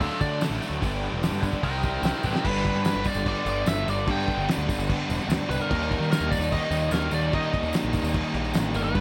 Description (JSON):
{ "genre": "classic rock", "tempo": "147 BPM", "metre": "4/4", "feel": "straight", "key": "unclear", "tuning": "A4 = 440 Hz", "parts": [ { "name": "biting lead guitar", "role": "melody", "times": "0.0-9.0 s", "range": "A4 to G5", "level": "-33 LUFS", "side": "equal", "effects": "overdrive, digital delay" }, { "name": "cranked stack guitar", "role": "riff", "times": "0.0-9.0 s", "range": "G2 to E4", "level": "-34 LUFS", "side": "equal", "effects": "overdrive, spring reverb" }, { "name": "thick fuzz guitar", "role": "riff", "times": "0.0-9.0 s", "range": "G2 to E4", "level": "-34 LUFS", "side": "equal", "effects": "distortion" }, { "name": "fuzz picked electric bass", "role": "bass", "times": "0.0-9.0 s", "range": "E1 to Eb3", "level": "-32 LUFS", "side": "equal", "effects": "overdrive" }, { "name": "cloth-damped thuddy drum kit", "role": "drums", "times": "0.0-9.0 s", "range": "crash cymbal, hi-hat, kick drum, snare drum", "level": "-31 LUFS", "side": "equal", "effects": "none" }, { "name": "tambourine", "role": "percussion", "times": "0.0-9.0 s", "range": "none", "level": "-48 LUFS", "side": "equal", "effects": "none" } ], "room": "small room ambience", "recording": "none", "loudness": "-26 LUFS", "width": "mono", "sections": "0.0-2.4 A section; 2.4-9.0 B section", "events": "lead electric guitar solo 0.0-2.4; drum fill 2.2", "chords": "0.0 D; 0.8 G; 1.6 C; 2.4 G; 5.7 Eb" }